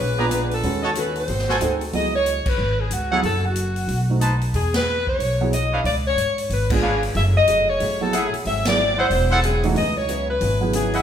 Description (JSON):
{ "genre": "jazz, big band swing", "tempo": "184 BPM", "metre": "4/4", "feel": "swing 62% on 8ths", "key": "C# minor", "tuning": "A4 = 440 Hz", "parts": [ { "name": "warm saxophone section", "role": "melody", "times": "0.0-11.0 s", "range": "F#4 to E5", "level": "-22 LUFS", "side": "left 1 dB", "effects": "none" }, { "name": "archtop guitar, miked and amplified", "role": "accompaniment", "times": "0.0-1.8, 7.2-11.0 s", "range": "G#2 to A4", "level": "-30 LUFS", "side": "left 3 dB", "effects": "none" }, { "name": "upright bass", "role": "bass", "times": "0.0-11.0 s", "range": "E1 to G#2", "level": "-23 LUFS", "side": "equal", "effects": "none" }, { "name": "warm grand piano", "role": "accompaniment", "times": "0.2-11.0 s", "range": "E3 to B#4", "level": "-26 LUFS", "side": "right 6 dB", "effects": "none" }, { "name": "clear trumpet section", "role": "stabs", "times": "0.2-11.0 s", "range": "D4 to A#5", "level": "-24 LUFS", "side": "right 1 dB", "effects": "none" }, { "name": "swinging big-band drum kit", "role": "drums", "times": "0.3-11.0 s", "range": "crash cymbal, hi-hat, kick drum, ride cymbal, snare drum", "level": "-30 LUFS", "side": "equal", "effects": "none" } ], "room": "wet recital hall reverb, RT60 1.3 s", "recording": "recorded in a church or concert hall", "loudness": "-18 LUFS", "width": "side -9 dB against mid", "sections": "0.0-1.9 A section; 1.9-11.0 A section", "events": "band accent 2.4, 4.7, 6.7, 8.6", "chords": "0.0 A#7b9; 0.6 D#m7b5; 1.3 G#7b9; 1.9 C#m7; 3.2 F#m; 3.9 B7b9; 4.5 E5; 5.8 C#7b9; 7.2 F#m9; 8.5 G#7b13; 9.8 C#m11" }